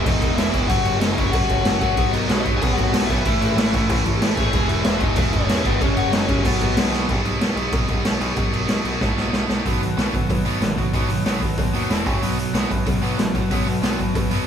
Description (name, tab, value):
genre	punk rock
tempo	188 BPM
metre	4/4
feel	straight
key	B major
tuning	A4 = 442 Hz
part	biting lead guitar	melody	0.0-6.9 s	B3 to G#5	-25 LUFS	left 4 dB	overdrive
part	distorted electric guitar	riff	0.0-7.1, 9.7-14.5 s	E2 to B3	-27 LUFS	equal	distortion
part	overdriven electric guitar	riff	0.0-14.5 s	F#2 to F#4	-26 LUFS	left 6 dB	none
part	tight distorted guitar	riff	0.0-14.5 s	E2 to B3	-27 LUFS	right 9 dB	distortion
part	growling picked electric bass	bass	0.0-14.4 s	E1 to F#2	-28 LUFS	equal	overdrive
part	raw garage drum kit	drums	0.1-14.4 s	crash cymbal, hi-hat, kick drum, snare drum	-21 LUFS	equal	none
room	light reverb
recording	band playing live in one room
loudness	-18 LUFS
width	side -8 dB against mid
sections	0.0-7.1 A section; 7.1-9.6 B section; 9.6-14.5 C section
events	drum fill 6.9, 9.0-9.6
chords	0.0 E; 0.7 F#; 2.0 B; 3.3 A; 4.5 E; 5.8 F#; 6.4 B; 11.9 E5; 12.1 F#5; 12.2 B5